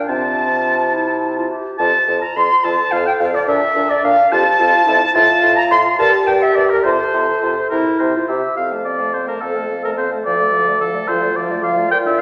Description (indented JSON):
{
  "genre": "quick classical-period movement for wind quintet",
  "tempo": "71 BPM (dotted quarters)",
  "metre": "6/8",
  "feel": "straight",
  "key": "F major",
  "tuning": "A4 = 436 Hz",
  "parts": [
    { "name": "mellow French horn", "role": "accompaniment", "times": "0.0-12.2 s", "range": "F3 to A4", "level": "-25 LUFS", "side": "equal", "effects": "none" },
    { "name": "warm clarinet", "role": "accompaniment", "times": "0.0-12.2 s", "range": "D4 to Bb4", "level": "-26 LUFS", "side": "equal", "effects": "none" },
    { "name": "warm bassoon", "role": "bass", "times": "0.0-12.2 s", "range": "D2 to C3", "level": "-24 LUFS", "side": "equal", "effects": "none" },
    { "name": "silver concert flute", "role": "melody", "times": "0.1-12.2 s", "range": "Bb4 to C6", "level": "-21 LUFS", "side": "equal", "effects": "none" },
    { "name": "mellow oboe", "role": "second line", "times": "0.1-12.2 s", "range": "A4 to C6", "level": "-20 LUFS", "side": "equal", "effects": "none" }
  ],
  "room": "wet recital hall reverb, RT60 1.6 s",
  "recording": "none",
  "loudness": "-16 LUFS",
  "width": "mono",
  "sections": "0.0-8.6 A section; 8.6-12.2 B section",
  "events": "none",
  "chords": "0.1 F/C; 0.9 C; 1.8 F; 3.5 Bb; 4.3 F; 5.1 F/A; 6.0 Gm; 6.8 F/C; 7.7 C; 8.6 F; 10.3 Dm"
}